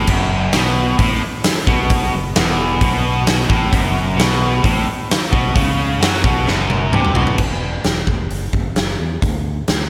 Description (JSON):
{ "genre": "classic rock", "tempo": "131 BPM", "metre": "4/4", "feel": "straight", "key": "F# minor", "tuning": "A4 = 440 Hz", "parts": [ { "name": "biting overdriven guitar", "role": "riff", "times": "0.0-7.4 s", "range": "E2 to F#3", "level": "-25 LUFS", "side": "equal", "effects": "none" }, { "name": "overdriven electric guitar", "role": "riff", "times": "0.0-7.4 s", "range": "E2 to F#3", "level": "-23 LUFS", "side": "equal", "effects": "spring reverb, slapback echo" }, { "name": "fingered electric bass", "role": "bass", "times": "0.0-9.9 s", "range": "E1 to F#2", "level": "-24 LUFS", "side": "equal", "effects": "none" }, { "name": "huge arena drum kit", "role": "drums", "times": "0.1-9.8 s", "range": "crash cymbal, hi-hat, kick drum, snare drum, toms", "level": "-20 LUFS", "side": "equal", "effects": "none" } ], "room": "moderate lush hall reverb, RT60 1.8 s, small room ambience", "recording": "big arena sound", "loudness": "-17 LUFS", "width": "mono", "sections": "0.0-7.4 A section; 7.4-9.9 B section", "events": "drum fill 6.5-7.4", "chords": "0.0 F#m; 7.4 N.C.; 8.3 Esus2/F#; 9.2 N.C." }